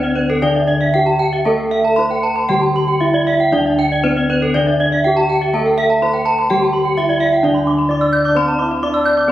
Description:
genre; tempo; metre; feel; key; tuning
Balinese gamelan; 116-130 BPM; 4/4; straight; D slendro; A4 = 440 Hz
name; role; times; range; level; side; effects
gamelan-type bronze metallophone; melody; 0.0-9.3 s; C4-45c to D5; -19 LUFS; equal; none
gamelan-type bronze metallophone; accompaniment; 0.0-9.3 s; D3 to C4-45c; -23 LUFS; equal; none
gamelan-type bronze metallophone; arpeggios; 0.0-9.3 s; A4+25c to D6; -20 LUFS; left 1 dB; none
gamelan-type bronze metallophone; arpeggios; 0.0-9.2 s; C5-45c to G6-35c; -18 LUFS; right 2 dB; none
gamelan-type bossed gongs; bass; 0.0-9.3 s; D2 to C5-45c; -22 LUFS; equal; none
trumpet with bucket mute; second line; 8.3-9.3 s; C4-44c to E4+27c; -19 LUFS; left 1 dB; none
room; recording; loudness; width
wet recital hall reverb, RT60 1.4 s; recorded on a phone in the room, studio reverb; -13 LUFS; side -13 dB against mid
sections
0.0-7.4 A section; 7.4-9.3 B section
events
none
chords
none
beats
0.42 0.94 | 1.46 1.98 2.49 3.01 | 3.53 4.04 4.55 5.05 | 5.54 6.02 6.50 6.97 | 7.44 7.90 8.36 8.82 | 9.28

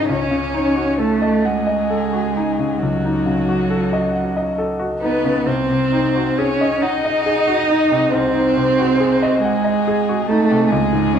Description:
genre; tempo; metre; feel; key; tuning
classical, slow romantic movement for piano trio; 43-48 BPM (dotted quarters); 12/8; rubato; unclear; A4 = 440 Hz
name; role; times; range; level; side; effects
dark violin; melody; 0.0-11.2 s; F#4 to D#5; -24 LUFS; left 8 dB; none
rich cello; second line; 0.0-11.2 s; F#3 to D#4; -18 LUFS; right 4 dB; none
bright concert grand piano; accompaniment; 0.0-11.2 s; B#1 to F#5; -19 LUFS; left 2 dB; none
room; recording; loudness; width
wet recital hall reverb, RT60 1.4 s; dark, warm production, nothing above 10.3 kHz; -15 LUFS; side -8 dB against mid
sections
0.0-11.2 A section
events
none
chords
0.1 D#m7b5/C#; 5.5 G#7/B#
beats
| 0.10 1.45 2.81 4.15 | 5.47 6.83 8.12 9.43 | 10.71

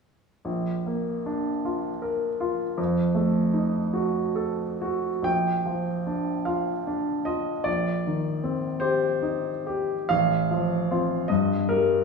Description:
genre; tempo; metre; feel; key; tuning
classical, romantic character piece for solo piano; 50 BPM (dotted quarters); 6/8; uneven beats, rubato; Bb major; A4 = 440 Hz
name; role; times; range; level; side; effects
clear baby grand piano; solo; 0.4-12.0 s; A1 to G5; -23 LUFS; equal; none
room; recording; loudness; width
wet recital hall reverb, RT60 1.7 s; studio ambience; -24 LUFS; side -4 dB against mid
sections
0.4-5.2 A section; 5.2-12.0 B section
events
none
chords
0.4 Bb; 2.8 F7b9; 5.2 Bb; 7.7 Cm7/Bb; 10.1 F/A; 11.3 Eb/G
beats
| 0.45 1.66 | 2.78 3.94 | 5.25 6.47 | 7.67 8.81 | 10.10 11.29

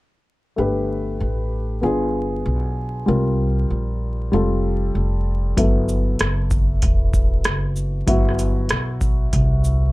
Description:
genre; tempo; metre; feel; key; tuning
hip hop, jazz-hop; 96 BPM; 4/4; swing 65% on 16ths; G major; A4 = 441 Hz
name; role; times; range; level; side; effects
dark upright piano; accompaniment; 0.6-9.9 s; F#3 to B4; -23 LUFS; left 1 dB; none
upright bass; bass; 0.6-9.9 s; E1 to C2; -21 LUFS; equal; none
booming analog drum machine; drums; 5.6-9.8 s; hi-hat, kick drum, rim click, shaker; -20 LUFS; equal; overdrive
room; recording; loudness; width
little or no reverb; vinyl crackle; -18 LUFS; side -20 dB against mid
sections
0.6-9.9 A section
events
none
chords
0.6 G; 1.8 G7b9; 3.1 C5; 4.3 Fadd9; 5.6 G6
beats
| 0.57 1.20 1.82 2.45 | 3.08 3.70 4.33 4.95 | 5.58 6.20 6.83 7.45 | 8.07 8.70 9.32

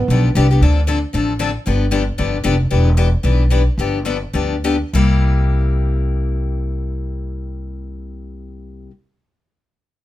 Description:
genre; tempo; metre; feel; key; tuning
acoustic string swing (jazz manouche); 195-230 BPM; 4/4; swing 55% on 8ths; C mixolydian; A4 = 440 Hz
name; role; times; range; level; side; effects
upright bass; bass; 0.0-8.9 s; E1 to D2; -17 LUFS; equal; none
picked steel-string acoustic guitar; accompaniment; 0.1-8.9 s; C3 to A4; -21 LUFS; left 5 dB; none
room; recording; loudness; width
light reverb; none; -15 LUFS; side -14 dB against mid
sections
0.6-4.9 A section; 4.9-7.4 B section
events
slowing down 2.7-4.9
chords
0.0 G7; 0.6 Dm7; 1.7 G7; 2.7 Em7; 3.8 G7; 4.9 C7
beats
0.09 0.35 | 0.62 0.88 1.14 1.40 | 1.66 1.93 2.19 2.45 | 2.71 2.97 3.24 3.50 | 3.78 4.06 4.34 4.63 | 4.94 5.25 5.55 5.86 | 6.17 6.48 6.79 7.09

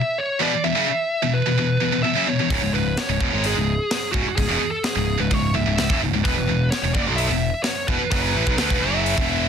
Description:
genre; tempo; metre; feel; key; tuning
heavy metal; 128 BPM; 4/4; straight; unclear; A4 = 440 Hz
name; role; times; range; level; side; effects
high-gain lead guitar; melody; 0.0-9.5 s; F#4 to E5; -25 LUFS; equal; distortion
heavy high-gain guitar; riff; 0.4-9.5 s; C#2 to B3; -24 LUFS; right 14 dB; distortion
tight distorted guitar; riff; 0.4-9.5 s; C#2 to B3; -25 LUFS; left 10 dB; distortion
overdriven picked electric bass; bass; 2.5-9.5 s; C#1 to D2; -25 LUFS; equal; none
tight metal drum kit; drums; 2.5-9.3 s; hi-hat, kick drum, snare drum; -25 LUFS; equal; none
room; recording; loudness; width
studio reverb; dense, heavily limited modern master; -18 LUFS; side -7 dB against mid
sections
0.0-9.5 A section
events
none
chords
0.0 E5; 2.5 C#m; 6.3 E5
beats
0.17 | 0.63 1.10 1.57 2.04 | 2.51 2.97 3.44 3.91 | 4.38 4.85 5.32 5.78 | 6.25 6.72 7.19 7.66 | 8.13 8.59 9.06

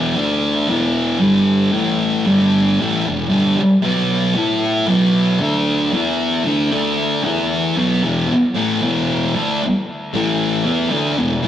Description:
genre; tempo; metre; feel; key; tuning
rock; 114 BPM; 4/4; straight; unclear; A4 = 440 Hz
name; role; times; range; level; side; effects
thick fuzz guitar; solo; 0.0-11.5 s; E2 to A4; -15 LUFS; equal; distortion, analog delay
room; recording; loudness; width
wet stone room reverb, RT60 1.3 s; rough rehearsal-room recording, tube saturation, cassette tape; -15 LUFS; side -10 dB against mid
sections
0.0-8.0 A section; 8.0-11.5 B section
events
none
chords
0.2 D5; 0.7 E5; 1.2 G5; 1.7 A5; 2.3 G5; 2.8 E5; 3.8 B5; 4.4 A5; 4.9 B5; 5.4 D5; 5.9 E5; 6.5 D5; 7.2 E5; 7.8 B5; 8.0 E5; 10.1 A5; 10.7 E5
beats
0.17 0.69 1.22 | 1.74 2.27 2.79 3.31 | 3.84 4.36 4.89 5.41 | 5.93 6.46 6.98 7.51 | 8.03 8.55 9.08 9.60 | 10.13 10.65 11.18

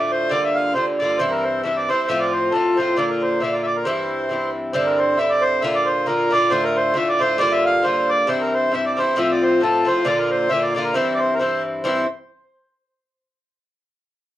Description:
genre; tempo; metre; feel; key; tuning
celtic folk, Celtic polka; 135 BPM; 2/4; swing 56% on 8ths; C mixolydian; A4 = 439 Hz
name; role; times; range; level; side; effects
accordion; melody; 0.0-12.1 s; A4 to F5; -20 LUFS; right 1 dB; none
Irish bouzouki; accompaniment; 0.0-12.1 s; G2 to F4; -20 LUFS; equal; none
room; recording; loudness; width
moderate small room reverb, RT60 0.5 s; worn, warbling old tape, cassette tape, warbly pitch drift; -17 LUFS; side -13 dB against mid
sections
0.0-4.7 A section; 4.7-11.8 A section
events
none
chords
0.3 Bb6; 1.2 C; 2.1 F; 3.0 Bb; 3.9 C; 4.7 Cadd9; 5.6 Bb; 6.5 Dm; 7.4 Bb6; 8.3 C; 9.2 F; 10.1 Bb; 11.0 C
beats
| 0.31 0.75 | 1.20 1.64 | 2.08 2.53 | 2.97 3.41 | 3.86 4.30 | 4.74 5.19 | 5.63 6.07 | 6.52 6.96 | 7.40 7.85 | 8.29 8.73 | 9.18 9.62 | 10.06 10.51 | 10.95 11.40 | 11.84

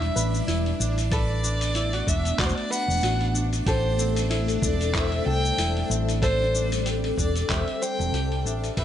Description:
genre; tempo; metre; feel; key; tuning
folktronica; 94 BPM; 4/4; swing 56% on 16ths; A dorian; A4 = 440 Hz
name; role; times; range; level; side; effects
warm violin; melody; 0.0-8.8 s; C5 to G5; -29 LUFS; equal; tape echo
warbly tape-like pad; sustained chords; 0.0-8.8 s; D3 to E4; -32 LUFS; equal; chorus, built-in reverb, phaser, vintage 12-bit sampler grit
tenor ukulele; arpeggios; 0.0-8.8 s; C4 to C5; -33 LUFS; right 1 dB; tape echo
hollow-body short-scale fingered electric bass; bass; 0.0-8.8 s; E1 to C2; -26 LUFS; equal; tube saturation
lo-fi sampler-style drum kit; drums; 0.0-8.8 s; handclaps, hi-hat, shaker; -31 LUFS; left 2 dB; none
backwards swelling texture; texture; 0.0-8.8 s; D4 to D5; -37 LUFS; right 2 dB; built-in reverb
electronic kick drum; drums; 1.1-8.8 s; none; -28 LUFS; equal; none
vibraphone with soft mallets; second line; 4.0-8.8 s; A4 to A5; -31 LUFS; left 7 dB; tape echo
room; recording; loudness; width
light reverb, digital ambience; nothing above 11.0 kHz; -22 LUFS; side -10 dB against mid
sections
0.0-8.8 A section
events
fade-out 7.1-8.8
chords
0.0 Em7; 1.1 Bm7; 3.7 Am7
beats
0.48 | 1.12 1.75 2.39 3.03 | 3.67 4.31 4.95 5.58 | 6.22 6.86 7.50 8.14 | 8.78

